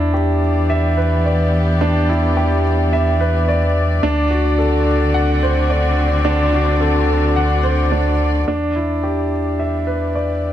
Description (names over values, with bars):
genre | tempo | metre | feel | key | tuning
piano and strings electronica | 108 BPM | 4/4 | straight | E minor | A4 = 440 Hz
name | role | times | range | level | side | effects
warm chamber string section | sustained chords | 0.0-10.5 s | D3 to D5 | -22 LUFS | left 2 dB | none
clear upright piano | riff | 0.0-10.5 s | D4 to F#5 | -18 LUFS | right 1 dB | low-pass filter, ping-pong delay
warm sub bass | bass | 0.0-10.5 s | D2 to E2 | -18 LUFS | equal | none
room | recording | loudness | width
moderate recital hall reverb, RT60 1.7 s, studio ambience | none | -14 LUFS | side -11 dB against mid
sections
0.0-8.5 A section; 8.5-10.5 B section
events
filter sweep on upright piano 8.5-10.5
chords
0.0 Em7; 4.0 D7; 8.5 Em7